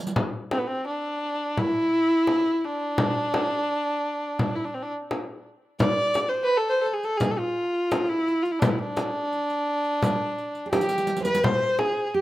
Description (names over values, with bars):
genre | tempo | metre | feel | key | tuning
Turkish makam ensemble | 85 BPM | 4/4 | straight | D makam nikriz | A4 = 440 Hz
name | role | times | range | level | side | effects
riq | percussion | 0.1-0.2, 5.8-11.4 s | none | -34 LUFS | right 3 dB | none
frame drum | percussion | 0.2-11.9 s | none | -26 LUFS | left 1 dB | none
rich kamancheh | melody | 0.5-12.2 s | B3 to D5 | -24 LUFS | equal | tape echo
nylon-string guitar | second line | 10.7-12.2 s | G4 to C5 | -29 LUFS | right 4 dB | none
room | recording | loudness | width
moderate small room reverb, RT60 0.5 s | rough home demo mix | -23 LUFS | side -15 dB against mid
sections
0.2-11.4 A section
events
drum fill 0.0, 10.7-11.4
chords
none